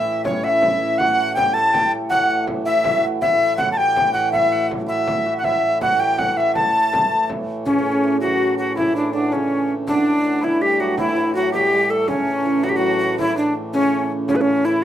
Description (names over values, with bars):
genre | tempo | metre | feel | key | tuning
medieval dance | 108 BPM (dotted quarters) | 6/8 | straight | A mixolydian | A4 = 444 Hz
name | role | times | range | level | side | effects
reedy tenor recorder | melody | 0.0-14.8 s | C#4 to A5 | -18 LUFS | equal | none
breathy bright tenor recorder | second line | 0.0-14.8 s | C#4 to A5 | -26 LUFS | left 3 dB | none
hammered dulcimer | second line | 0.0-14.8 s | C#3 to A4 | -26 LUFS | right 4 dB | none
hand-pumped harmonium | drone | 0.0-14.8 s | A2 to E3 | -27 LUFS | left 1 dB | none
frame drum | percussion | 0.2-14.5 s | none | -32 LUFS | left 2 dB | none
room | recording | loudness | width
wet small room reverb, RT60 0.6 s | rough home demo mix | -16 LUFS | side -10 dB against mid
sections
0.0-7.7 A section; 7.7-14.8 B section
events
none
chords
none